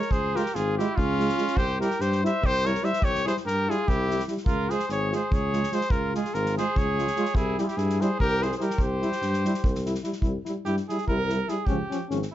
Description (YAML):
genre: balkan folk, Balkan brass band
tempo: 291 BPM (eighths)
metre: 7/8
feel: straight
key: C phrygian dominant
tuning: A4 = 438 Hz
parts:
  - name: clear cornet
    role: melody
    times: 0.0-9.9 s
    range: F4 to E5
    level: -28 LUFS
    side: left 2 dB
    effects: none
  - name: clear trumpet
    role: second line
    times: 0.0-12.3 s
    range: Db4 to C5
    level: -31 LUFS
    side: right 4 dB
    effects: none
  - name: unplugged drum kit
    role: percussion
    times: 0.0-12.3 s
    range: kick drum, snare drum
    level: -29 LUFS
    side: equal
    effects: none
  - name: mellow tuba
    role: bass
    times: 0.1-12.2 s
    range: Ab1 to G2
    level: -28 LUFS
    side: left 1 dB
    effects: none
  - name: clear French horn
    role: accompaniment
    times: 0.4-12.2 s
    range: Db4 to F4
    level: -33 LUFS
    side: left 4 dB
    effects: none
  - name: mellow euphonium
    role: accompaniment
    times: 0.4-12.2 s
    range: F3 to Ab3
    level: -31 LUFS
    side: right 3 dB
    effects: none
room: light reverb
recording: dark, warm production, nothing above 7.8 kHz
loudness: -23 LUFS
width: side -12 dB against mid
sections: 0.0-10.2 A section; 10.2-12.3 B section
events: trumpet solo 10.2-12.3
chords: 0.0 Db; 1.6 C; 4.5 Db; 7.4 C; 11.7 Db